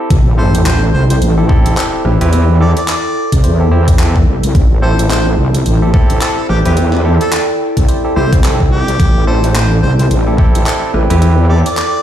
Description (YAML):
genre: glitch hop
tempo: 108 BPM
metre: 4/4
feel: swing 59% on 16ths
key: A minor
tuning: A4 = 440 Hz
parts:
  - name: barky tine electric piano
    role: stabs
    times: 0.0-11.7 s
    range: C4 to C5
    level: -20 LUFS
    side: right 1 dB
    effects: overdrive, sidechain pumping, ping-pong delay
  - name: warbly tape-like pad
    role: texture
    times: 0.0-12.0 s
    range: E4 to A5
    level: -20 LUFS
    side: right 1 dB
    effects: chorus, built-in reverb, sidechain pumping
  - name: wobble bass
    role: bass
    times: 0.1-11.6 s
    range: A1 to E2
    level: -11 LUFS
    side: equal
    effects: chorus, overdrive
  - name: electronic kick drum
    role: drums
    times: 0.1-10.5 s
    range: none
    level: -10 LUFS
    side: equal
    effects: overdrive
  - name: pop drum kit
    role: drums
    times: 0.1-11.9 s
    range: handclaps, hi-hat, rim click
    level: -21 LUFS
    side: equal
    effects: overdrive
  - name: sub drop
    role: sound effects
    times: 0.1-2.3 s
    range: none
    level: -20 LUFS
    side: equal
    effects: none
  - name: warm harmonica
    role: melody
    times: 0.4-12.0 s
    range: G4 to D5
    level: -22 LUFS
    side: equal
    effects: ping-pong delay
room: little or no reverb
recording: played on a big sound system in a bare room, stone room reverb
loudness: -9 LUFS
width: side -11 dB against mid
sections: 0.1-12.0 A section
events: drop 0.1-12.0; impact 0.1-2.3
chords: 0.1 Am7